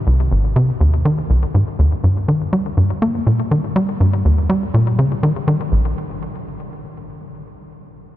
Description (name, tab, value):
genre	ambient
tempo	122 BPM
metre	4/4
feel	straight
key	unclear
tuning	A4 = 438 Hz
part	tight sequencer bass	solo	0.1-6.0 s	Ab1 to Bb3	-15 LUFS	equal	ping-pong delay
room	moderate huge ambient reverb, RT60 7.8 s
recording	none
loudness	-14 LUFS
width	side -14 dB against mid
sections	0.0-5.7 A section; 5.7-8.2 B section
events	none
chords	none